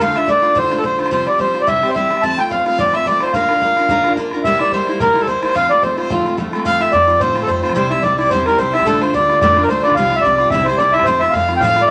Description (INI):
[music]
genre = celtic folk, Celtic reel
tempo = 217 BPM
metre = 4/4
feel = swing 55% on 8ths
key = F major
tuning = A4 = 439 Hz
[part]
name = mellow accordion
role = melody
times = 0.0-11.9 s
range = F4 to A5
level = -16 LUFS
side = equal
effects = none
[part]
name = bright fiddle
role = second line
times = 0.0-11.9 s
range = F4 to A5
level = -28 LUFS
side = equal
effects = none
[part]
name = picked steel-string acoustic guitar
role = accompaniment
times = 0.0-11.9 s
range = D2 to Bb4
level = -24 LUFS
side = equal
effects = none
[part]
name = bodhran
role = percussion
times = 0.0-11.9 s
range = none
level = -28 LUFS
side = equal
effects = none
[part]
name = upright bass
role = bass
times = 6.7-11.8 s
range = C2 to F3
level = -28 LUFS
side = equal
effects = none
[sound]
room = moderate studio reverb, RT60 0.7 s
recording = none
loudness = -15 LUFS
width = mono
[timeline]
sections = 0.0-6.7 A section; 6.7-11.9 A section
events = none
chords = 0.0 Dm; 1.1 Csus4; 1.7 C; 2.2 F; 3.3 Bb; 4.4 C7; 5.5 F; 7.8 C; 8.9 Dm; 10.0 Csus4; 10.5 C; 11.1 F